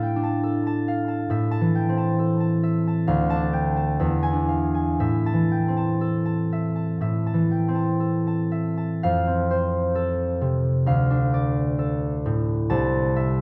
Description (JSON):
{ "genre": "classical, solo harp piece", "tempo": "57-73 BPM", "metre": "4/4", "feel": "rubato", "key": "A minor", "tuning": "A4 = 441 Hz", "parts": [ { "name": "concert harp", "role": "solo", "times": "0.0-13.4 s", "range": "C2 to A5", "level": "-23 LUFS", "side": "equal", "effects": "none" } ], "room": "moderate recital hall reverb, RT60 1.7 s", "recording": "dark, warm production", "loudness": "-23 LUFS", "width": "mono", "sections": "0.0-9.0 A section; 9.0-13.4 B section", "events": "none", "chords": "0.0 Dm/A; 1.3 Am; 3.1 Dm; 4.0 E7; 5.0 Am; 9.0 F; 10.9 Dm; 12.7 Am/C" }